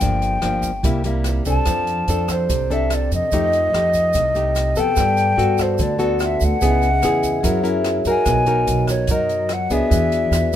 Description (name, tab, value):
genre	bossa nova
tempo	145 BPM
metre	4/4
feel	straight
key	unclear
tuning	A4 = 440 Hz
part	mellow hollow jazz flute	melody	0.0-10.6 s	C5 to A5	-20 LUFS	left 1 dB	none
part	nylon-string guitar	accompaniment	0.0-10.6 s	G2 to A#4	-22 LUFS	left 2 dB	none
part	upright bass	bass	0.0-10.6 s	G1 to G2	-22 LUFS	right 1 dB	none
part	open jazz drum kit	drums	0.0-10.6 s	hi-hat, kick drum, rim click	-26 LUFS	equal	none
part	tube shaker	percussion	0.0-10.6 s	none	-34 LUFS	right 7 dB	none
part	vibraphone with medium mallets	accompaniment	4.9-10.6 s	F#4 to A5	-25 LUFS	equal	none
room	light reverb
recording	minimal, uncompressed stereo recording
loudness	-16 LUFS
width	side -10 dB against mid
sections	0.0-10.6 A section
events	none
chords	0.0 Gm7; 0.8 C7; 1.7 F6; 3.3 F9; 5.0 Gmaj9; 6.6 C#m7; 7.4 F#7; 8.3 Bmaj7; 9.9 E7